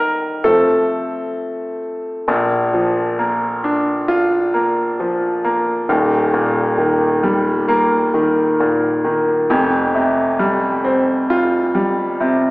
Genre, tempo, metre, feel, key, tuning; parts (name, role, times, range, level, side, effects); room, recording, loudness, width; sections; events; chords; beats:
pop; 66 BPM; 4/4; straight; Bb major; A4 = 440 Hz
bright concert grand piano; solo; 0.0-12.5 s; Eb1 to G5; -15 LUFS; equal
wet recital hall reverb, RT60 1.4 s; recorded in a church or concert hall, small speaker sound; -15 LUFS; side -21 dB against mid
0.0-2.3 A section; 2.3-12.5 B section
grand piano solo 0.0-2.3
0.4 F; 2.3 Bb; 5.9 Eb; 9.5 Fsus2
0.44 1.36 | 2.28 3.19 4.09 5.00 | 5.90 6.79 7.69 8.59 | 9.49 10.39 11.29 12.19